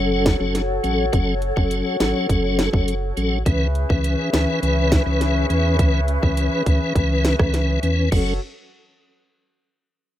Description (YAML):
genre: dancehall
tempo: 103 BPM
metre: 4/4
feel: straight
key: F# minor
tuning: A4 = 440 Hz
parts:
  - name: tonewheel organ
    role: accompaniment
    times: 0.0-8.3 s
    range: E3 to B4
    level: -22 LUFS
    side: left 1 dB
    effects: chorus vibrato, fast rotary speaker
  - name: breathy large flute ensemble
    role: sustained chords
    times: 0.0-8.4 s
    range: C#4 to E5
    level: -26 LUFS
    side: left 2 dB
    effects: sidechain pumping
  - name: sub bass with octave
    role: bass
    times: 0.0-8.4 s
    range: F#1 to E2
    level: -22 LUFS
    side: equal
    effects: none
  - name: island pop drum kit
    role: drums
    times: 0.3-8.3 s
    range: crash cymbal, hi-hat, kick drum, rim click, snare drum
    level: -20 LUFS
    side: equal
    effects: none
room: digital ambience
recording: rough home demo mix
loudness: -17 LUFS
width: side -12 dB against mid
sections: 0.0-8.1 A section; 8.1-10.2 B section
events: none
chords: 0.0 F#m; 3.5 C#m7; 8.1 F#m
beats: 0.55 | 1.13 1.71 2.30 2.88 | 3.46 4.04 4.63 5.21 | 5.79 6.37 6.96 7.54 | 8.12